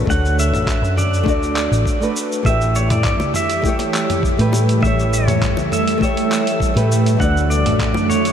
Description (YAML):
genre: sunset chillout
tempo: 101 BPM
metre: 4/4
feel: straight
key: D major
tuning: A4 = 441 Hz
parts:
  - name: nylon-string guitar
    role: accompaniment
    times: 0.0-8.3 s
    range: A3 to E5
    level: -21 LUFS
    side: left 1 dB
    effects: auto-pan, tape echo
  - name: hollow-body short-scale fingered electric bass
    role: bass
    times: 0.0-8.1 s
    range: A1 to A2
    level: -18 LUFS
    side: equal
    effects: none
  - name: pedal steel guitar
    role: melody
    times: 0.1-8.3 s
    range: C#5 to F#5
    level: -22 LUFS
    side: equal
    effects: lush chorus, analog delay
  - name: dusty soul sampler-style drum kit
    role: drums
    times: 0.1-8.3 s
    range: cabasa, handclaps, hi-hat, toms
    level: -25 LUFS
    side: equal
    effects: overdrive, studio reverb
  - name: electronic kick drum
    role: drums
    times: 0.1-7.9 s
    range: none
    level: -21 LUFS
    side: equal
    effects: overdrive, studio reverb
  - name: ethereal airy pad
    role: sustained chords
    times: 3.1-8.3 s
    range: D3 to E5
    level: -21 LUFS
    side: right 2 dB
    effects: ensemble chorus, built-in reverb
  - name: bongos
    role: percussion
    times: 3.2-8.1 s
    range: none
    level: -32 LUFS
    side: left 4 dB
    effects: none
room: moderate huge ambient reverb, RT60 8.7 s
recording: dreamy mix soaked in reverb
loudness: -15 LUFS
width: side -8 dB against mid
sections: 0.0-8.3 A section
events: none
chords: 0.0 Dmaj7; 2.5 A7; 7.2 Dmaj7